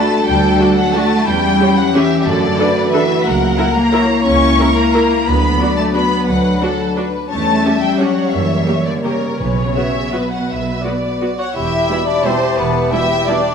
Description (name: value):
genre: classical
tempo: 155-194 BPM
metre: 3/4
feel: rubato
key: B minor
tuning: A4 = 440 Hz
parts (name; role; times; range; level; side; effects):
- dark symphonic violin section; melody; 0.0-13.5 s; B4 to C#6; -20 LUFS; left 5 dB; none
- warm studio violin section; second line; 0.0-13.5 s; E4 to F#5; -21 LUFS; left 1 dB; none
- warm symphonic viola section; accompaniment; 0.0-13.4 s; G3 to A#4; -22 LUFS; right 2 dB; none
- dark French horn section; sustained chords; 0.0-13.4 s; F#3 to G4; -19 LUFS; left 4 dB; none
- warm symphonic cello section; bass; 0.0-12.9 s; E2 to C#4; -20 LUFS; right 3 dB; none
- clear symphonic double bass section; bass; 0.3-12.9 s; E1 to F#2; -22 LUFS; right 3 dB; none
- timpani; percussion; 9.4-9.9 s; B2; -26 LUFS; left 1 dB; none
- mellow cor anglais; second line; 11.4-13.5 s; B3 to F#4; -23 LUFS; right 3 dB; none
- warm clarinet; second line; 11.6-13.5 s; G4; -24 LUFS; left 7 dB; none
- warm bassoon; accompaniment; 11.6-13.5 s; E4; -23 LUFS; right 1 dB; none
- bright trombone section; sustained chords; 11.9-13.4 s; B2 to E3; -24 LUFS; right 4 dB; none
room: wet concert hall reverb, RT60 2.0 s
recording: none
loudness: -13 LUFS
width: side -6 dB against mid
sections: 0.0-11.6 A section; 11.6-13.5 B section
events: none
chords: 0.0 D; 1.3 C#dim/E; 2.3 D/F#; 3.3 F#7/C#; 5.3 Bm/D; 7.3 C#dim/E; 8.3 F#7b9; 9.4 Bm; 11.6 Em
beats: | 0.28 0.61 0.94 | 1.26 1.59 1.94 | 2.26 2.59 2.93 | 3.26 3.59 3.93 | 4.26 4.59 4.95 | 5.28 5.61 5.95 | 6.28 6.62 6.97 | 7.31 7.65 8.00 | 8.33 8.67 9.03 | 9.39 9.76 10.14 | 10.49 10.85 11.21 | 11.56 11.90 12.26 | 12.59 12.93 13.29